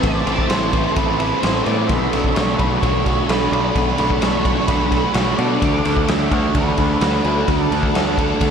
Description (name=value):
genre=rock, shoegaze and dream pop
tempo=129 BPM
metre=4/4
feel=straight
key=unclear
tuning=A4 = 438 Hz
part: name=octave-fuzz lead guitar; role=melody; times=0.0-8.5 s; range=A4 to E5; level=-24 LUFS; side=right 2 dB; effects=distortion, ping-pong delay
part: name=phased string machine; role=sustained chords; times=0.0-8.5 s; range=D4 to D6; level=-25 LUFS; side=equal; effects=ensemble chorus, phaser
part: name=mellow electric guitar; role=arpeggios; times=0.0-8.5 s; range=E3 to F#4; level=-29 LUFS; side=equal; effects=none
part: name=crunchy overdriven guitar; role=riff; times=0.0-8.5 s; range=A2 to E4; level=-23 LUFS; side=right 8 dB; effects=reverse reverb
part: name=thick fuzz guitar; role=riff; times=0.0-8.5 s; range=A2 to B4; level=-24 LUFS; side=left 10 dB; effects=distortion, lush chorus
part: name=growling picked electric bass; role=bass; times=0.0-8.5 s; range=A1 to B2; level=-23 LUFS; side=equal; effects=overdrive
part: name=raw garage drum kit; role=drums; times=0.0-8.5 s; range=kick drum, ride cymbal, snare drum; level=-21 LUFS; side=equal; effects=none
room=moderate huge ambient reverb, RT60 4.2 s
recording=dreamy mix soaked in reverb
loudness=-15 LUFS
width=side -7 dB against mid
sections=0.0-8.5 A section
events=none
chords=0.0 Amadd9; 1.9 Bm7; 5.6 D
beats=| 0.04 0.50 0.97 1.43 | 1.89 2.36 2.82 3.29 | 3.75 4.22 4.68 5.15 | 5.62 6.08 6.55 7.01 | 7.48 7.95 8.41